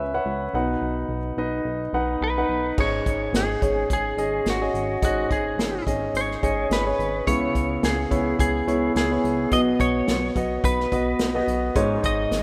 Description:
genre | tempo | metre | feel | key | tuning
piano-driven pop | 107 BPM | 4/4 | swing 56% on 16ths | unclear | A4 = 440 Hz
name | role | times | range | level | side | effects
warm concert grand piano | accompaniment | 0.0-12.4 s | G#2 to F#5 | -26 LUFS | equal | none
chorused synth bass | bass | 0.0-12.4 s | G#1 to C#2 | -33 LUFS | equal | none
lightly driven lead guitar | melody | 2.2-12.4 s | F#4 to D#5 | -28 LUFS | equal | none
unplugged drum kit | drums | 2.8-12.4 s | crash cymbal, hi-hat, kick drum, snare drum | -29 LUFS | equal | none
direct-recorded clean electric guitar | riff | 11.8-12.3 s | C#4 to D#4 | -37 LUFS | equal | none
room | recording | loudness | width
moderate lush hall reverb, RT60 2.3 s | rough home demo mix | -23 LUFS | mono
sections
0.0-2.8 A section; 2.8-12.4 B section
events
none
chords
0.0 C#m7; 0.5 B; 2.8 G#sus4; 7.3 C#m7; 9.5 B; 11.8 G#sus4

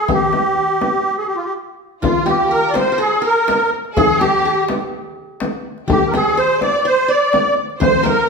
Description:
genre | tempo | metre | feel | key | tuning
Arabic maqam ensemble | 124 BPM | 4/4 | straight | G maqam bayati | A4 = 437 Hz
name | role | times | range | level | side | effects
musette accordion | melody | 0.0-8.3 s | F4 to D5 | -16 LUFS | right 1 dB | none
qanun | second line | 0.0-8.3 s | F4 to D5 | -23 LUFS | equal | none
darbuka | percussion | 0.1-8.2 s | none | -26 LUFS | left 5 dB | none
frame drum | percussion | 0.1-8.2 s | none | -21 LUFS | left 2 dB | none
warm symphonic violin section | second line | 2.0-8.3 s | F4 to D5 | -25 LUFS | left 3 dB | none
room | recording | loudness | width
wet large studio reverb, RT60 1.2 s | band playing live in one room | -14 LUFS | side -4 dB against mid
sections
0.0-2.0 A section; 2.0-8.3 B section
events
stop 1.1-2.0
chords
none

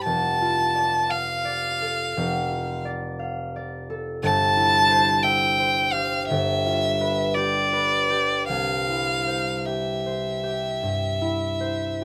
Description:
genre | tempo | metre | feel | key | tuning
classical, romantic duo for violin and harp | 50-60 BPM (dotted quarters) | 12/8 | rubato | C major | A4 = 438 Hz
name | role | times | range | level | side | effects
rich violin | melody | 0.0-12.0 s | D5 to A5 | -24 LUFS | equal | none
concert harp | accompaniment | 0.0-12.0 s | F1 to F5 | -29 LUFS | equal | none
room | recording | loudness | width
little or no reverb | close, detailed microphones | -23 LUFS | mono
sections
0.0-12.0 A section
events
none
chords
0.1 Dm/F; 4.2 C/G; 6.3 G7; 8.5 C

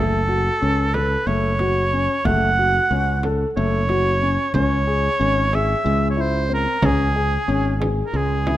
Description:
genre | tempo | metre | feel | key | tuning
contemporary instrumental, chamber music in an uneven meter | 183 BPM (eighths) | 7/8 | straight | unclear | A4 = 440 Hz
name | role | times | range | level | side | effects
clear oboe | melody | 0.0-8.6 s | Ab4 to Gb5 | -21 LUFS | right 2 dB | none
dark baby grand piano | arpeggios | 0.0-8.6 s | Ab3 to A4 | -24 LUFS | left 3 dB | none
modern bright fingered electric bass | bass | 0.0-8.6 s | Gb1 to Db2 | -22 LUFS | equal | none
frame drum | percussion | 0.9-8.6 s | none | -26 LUFS | right 2 dB | none
room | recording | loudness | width
light reverb | close, detailed microphones | -17 LUFS | side -14 dB against mid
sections
0.0-8.6 A section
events
none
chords
0.0 Gbm; 4.5 Db5

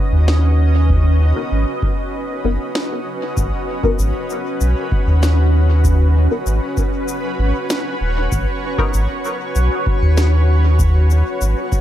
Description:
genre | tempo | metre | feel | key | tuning
ambient dub | 97 BPM | 4/4 | straight | G# minor | A4 = 440 Hz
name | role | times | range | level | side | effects
granular cloud pad | sustained chords | 0.0-11.8 s | C#4 to D#5 | -22 LUFS | equal | built-in reverb
warm sub bass | bass | 0.1-11.6 s | D#1 to D#2 | -13 LUFS | equal | tube saturation
electronic snare drum and shaker | drums | 0.3-11.8 s | none | -25 LUFS | equal | overdrive, dub echo
electronic kick drum | drums | 0.9-11.8 s | none | -20 LUFS | equal | none
filtered dub chord stab | stabs | 1.4-8.9 s | B3 to A#4 | -26 LUFS | left 4 dB | phaser, ensemble chorus, dub echo
room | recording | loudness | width
little or no reverb | none | -14 LUFS | side -12 dB against mid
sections
0.0-11.8 A section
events
none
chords
0.0 G#m7 (rootless)

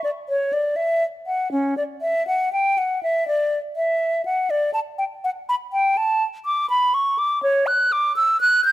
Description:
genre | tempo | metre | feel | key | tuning
classical, baroque-style fantasia for unaccompanied flute | 81 BPM (dotted quarters) | 12/8 | rubato | unclear | A4 = 440 Hz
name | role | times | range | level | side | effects
hollow concert flute | solo | 0.0-8.7 s | C#4 to G6 | -19 LUFS | equal | none
room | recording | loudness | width
light reverb | close, detailed microphones | -19 LUFS | side -14 dB against mid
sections
0.0-8.7 A section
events
none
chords
none

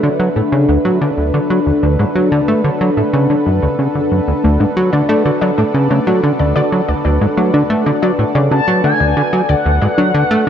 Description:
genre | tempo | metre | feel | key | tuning
ambient, sequencer-driven space music | 92 BPM | 4/4 | straight | D major | A4 = 440 Hz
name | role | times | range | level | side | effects
sweeping resonant pad | sustained chords | 0.0-10.5 s | D4 to F#5 | -17 LUFS | left 1 dB | chorus
plucky analog bass | riff | 0.0-10.5 s | D2 to A3 | -14 LUFS | equal | tape echo
wide unison pluck | arpeggios | 4.4-10.5 s | A3 to D5 | -21 LUFS | left 2 dB | auto-pan, tape echo
expressive synth lead | melody | 8.5-10.5 s | F#5 to A5 | -17 LUFS | left 2 dB | wide subtle chorus, tape echo
room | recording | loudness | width
moderate plate reverb, RT60 2.8 s | cassette tape | -12 LUFS | side -8 dB against mid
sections
0.0-10.5 A section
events
none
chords
0.0 D6

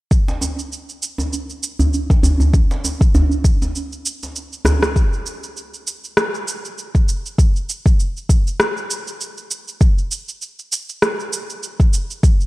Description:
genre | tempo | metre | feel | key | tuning
downtempo | 99 BPM | 4/4 | swing 56% on 16ths | none | none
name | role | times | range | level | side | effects
electronic kick drum | drums | 0.1-12.4 s | none | -14 LUFS | equal | studio reverb
electronic shaker and rim click | drums | 0.1-12.5 s | none | -22 LUFS | equal | studio reverb
djembe | percussion | 0.3-4.8 s | none | -18 LUFS | equal | none
room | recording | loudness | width
little or no reverb | dry, gritty hardware recording | -16 LUFS | side -19 dB against mid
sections
0.1-5.0 A section; 5.0-12.5 B section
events
drum fill 4.7-5.0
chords
none

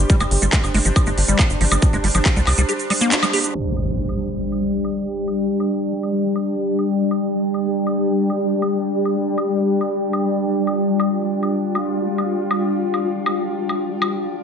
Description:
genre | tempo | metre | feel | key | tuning
psychedelic trance | 139 BPM | 4/4 | straight | unclear | A4 = 445 Hz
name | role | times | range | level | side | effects
bubbling stepped-filter texture | sustained chords | 0.0-14.4 s | G3 to G4 | -21 LUFS | left 2 dB | chorus, built-in reverb, sidechain pumping
tight sequencer bass | bass | 0.0-2.6 s | G1 to C2 | -19 LUFS | equal | none
warbly tape-like pad | texture | 0.0-14.4 s | D4 to C6 | -25 LUFS | right 3 dB | chorus, built-in reverb, sidechain pumping
liquid acid bass | riff | 0.1-3.4 s | F3 to G4 | -23 LUFS | left 1 dB | chorus, auto-pan, sidechain pumping, tape echo
big-room dance drum kit | drums | 0.1-14.1 s | handclaps, hi-hat, woodblock | -23 LUFS | equal | small room ambience
electronic kick drum | drums | 0.1-2.3 s | none | -17 LUFS | equal | small room ambience
cabasa | percussion | 0.1-3.5 s | none | -27 LUFS | right 4 dB | none
impact | sound effects | 3.5-5.3 s | none | -26 LUFS | equal | none
room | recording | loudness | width
moderate digital room reverb, RT60 1.2 s | low-pass filter, nothing above 10.3 kHz | -17 LUFS | side -6 dB against mid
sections
0.0-3.5 A section; 3.5-14.4 B section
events
band accent 3.1; impact 3.5-5.3; filter sweep on synth texture 3.5-14.4; filter sweep 3.5-14.4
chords
0.0 G5

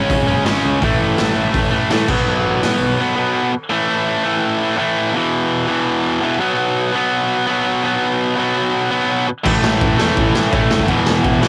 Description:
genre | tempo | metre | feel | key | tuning
punk rock | 167 BPM | 4/4 | straight | unclear | A4 = 441 Hz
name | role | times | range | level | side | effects
overdriven electric guitar | riff | 0.0-3.5, 9.4-11.5 s | E2 to C#4 | -25 LUFS | equal | cassette tape
tight distorted guitar | riff | 0.0-11.5 s | E2 to C#4 | -18 LUFS | equal | distortion, cassette tape
fuzz picked electric bass | bass | 0.0-2.9, 9.5-11.5 s | E1 to A2 | -25 LUFS | equal | overdrive
raw garage drum kit | drums | 0.1-2.7, 9.5-11.5 s | crash cymbal, hi-hat, kick drum, ride cymbal, snare drum | -22 LUFS | equal | none
room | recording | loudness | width
light reverb | home recording on cassette | -17 LUFS | mono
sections
0.0-3.7 A section; 3.7-11.5 B section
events
half time 0.0-3.7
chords
0.0 C#5; 0.8 A5; 2.1 B5; 3.7 A5; 5.1 E5; 6.4 B5; 9.5 A5; 10.9 E5

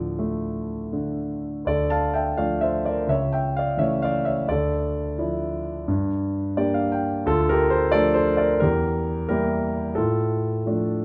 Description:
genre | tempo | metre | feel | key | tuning
classical, lyrical solo piano | 86 BPM | 4/4 | rubato | D minor | A4 = 440 Hz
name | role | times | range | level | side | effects
warm concert grand piano | solo | 0.0-11.0 s | C#2 to A5 | -24 LUFS | equal | none
room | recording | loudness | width
moderate recital hall reverb, RT60 1.4 s | dark, warm production | -24 LUFS | mono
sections
0.0-1.7 A section; 1.7-11.0 B section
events
grand piano fill 6.2-7.3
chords
0.0 Dm; 3.1 A/C#; 4.5 Dmadd9; 5.9 Gm; 7.3 Dm; 8.6 Edim; 10.0 Dm/A

